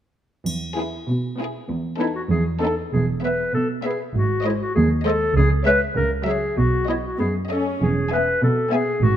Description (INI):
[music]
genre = cinematic, playful, whimsical film cue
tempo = 98 BPM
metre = 2/4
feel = straight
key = E major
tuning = A4 = 441 Hz
[part]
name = dark studio cello section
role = bass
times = 0.5-9.2 s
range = D#2 to C#3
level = -24 LUFS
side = right 2 dB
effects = none
[part]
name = triangle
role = percussion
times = 0.5-1.6 s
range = none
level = -35 LUFS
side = left 1 dB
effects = none
[part]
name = clear studio violin section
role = melody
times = 0.8-9.0 s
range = G#4 to G#5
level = -31 LUFS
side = left 2 dB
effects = none
[part]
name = dark studio violin section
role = second line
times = 0.8-9.0 s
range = D#4 to E5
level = -30 LUFS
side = left 3 dB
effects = none
[part]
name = dark studio viola section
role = accompaniment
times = 0.8-8.9 s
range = F#3 to C#4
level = -28 LUFS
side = right 1 dB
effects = none
[part]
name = warm clarinet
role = second line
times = 2.0-9.2 s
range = E4 to B4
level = -23 LUFS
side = left 2 dB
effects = none
[part]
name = warm studio double bass section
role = bass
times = 2.9-9.2 s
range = E1 to C#2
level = -22 LUFS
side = right 2 dB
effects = none
[sound]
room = light reverb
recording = none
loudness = -19 LUFS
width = side -10 dB against mid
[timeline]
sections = 0.5-2.9 A section; 2.9-9.2 B section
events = none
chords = 0.5 E; 4.2 G#; 5.4 C#m; 6.0 F#7/C#; 6.6 B; 7.8 E